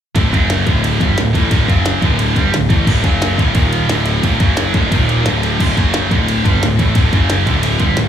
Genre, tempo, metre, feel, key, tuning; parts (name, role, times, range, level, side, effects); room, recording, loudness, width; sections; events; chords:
heavy metal; 176 BPM; 4/4; straight; A4 = 440 Hz
scooped high-gain guitar; riff; 0.2-8.1 s; D2 to A3; -21 LUFS; left 14 dB; distortion
scooped high-gain guitar; riff; 0.2-8.1 s; D2 to A3; -17 LUFS; right 6 dB; distortion, slapback echo
fuzz picked electric bass; bass; 0.2-8.1 s; D1 to A1; -19 LUFS; left 1 dB; overdrive
glitchy drum kit; drums; 0.2-8.1 s; crash cymbal, kick drum, ride cymbal, snare drum; -16 LUFS; left 1 dB
little or no reverb; live gig heard through the venue's PA, club ambience; -12 LUFS; side -9 dB against mid
0.2-8.1 A section
0.2 D5; 0.3 F#5; 0.7 D5; 1.7 F#5; 2.0 D5; 3.0 F#5; 3.4 D5; 3.6 Eb5; 3.9 D5; 4.4 F#5; 4.7 D5; 4.9 Eb5; 5.3 D5; 5.8 F#5; 6.1 D5; 7.1 F#5; 7.5 D5